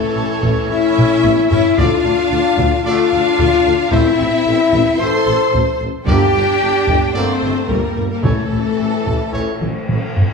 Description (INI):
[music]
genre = cinematic, epic orchestral film score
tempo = 111 BPM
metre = 4/4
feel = straight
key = unclear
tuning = A4 = 440 Hz
[part]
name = rich symphonic violin section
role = melody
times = 0.0-9.9 s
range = A4 to C6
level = -28 LUFS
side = left 3 dB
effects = none
[part]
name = clear symphonic violin section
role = second line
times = 0.0-9.9 s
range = A4 to C6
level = -27 LUFS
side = left 2 dB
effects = none
[part]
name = mellow hollow flute section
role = second line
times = 0.0-9.9 s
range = A4 to C6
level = -25 LUFS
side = left 5 dB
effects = none
[part]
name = rich symphonic viola section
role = accompaniment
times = 0.0-9.9 s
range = E3 to A4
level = -24 LUFS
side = right 2 dB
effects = none
[part]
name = bright trombone section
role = sustained chords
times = 0.0-9.5 s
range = D3 to Bb3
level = -27 LUFS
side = equal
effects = none
[part]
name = dark French horn section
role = sustained chords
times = 0.0-9.9 s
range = A3 to C5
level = -17 LUFS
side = left 6 dB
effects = none
[part]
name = clear trumpet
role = stabs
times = 0.0-9.5 s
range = C5 to D5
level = -29 LUFS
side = right 2 dB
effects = none
[part]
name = rich studio cello section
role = bass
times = 0.0-9.9 s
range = A3 to C5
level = -24 LUFS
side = right 2 dB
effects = none
[part]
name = timpani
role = percussion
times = 0.0-0.4, 8.2-9.0 s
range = A2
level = -28 LUFS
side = left 1 dB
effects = none
[part]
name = rich symphonic double bass section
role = bass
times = 0.2-10.2 s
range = G1 to D2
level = -23 LUFS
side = right 3 dB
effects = none
[part]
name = warm tuba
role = bass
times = 0.2-10.3 s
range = G1 to D2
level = -26 LUFS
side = right 1 dB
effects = none
[part]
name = taiko ensemble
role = drums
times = 0.4-10.3 s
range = none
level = -20 LUFS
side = equal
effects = none
[sound]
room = moderate scoring stage reverb, RT60 1.7 s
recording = none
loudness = -13 LUFS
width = side -4 dB against mid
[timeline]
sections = 0.0-10.3 A section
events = drum fill 1.0-1.8, 9.6-10.3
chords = 0.0 A; 1.8 Dm; 3.9 Am; 6.1 Gm; 8.2 A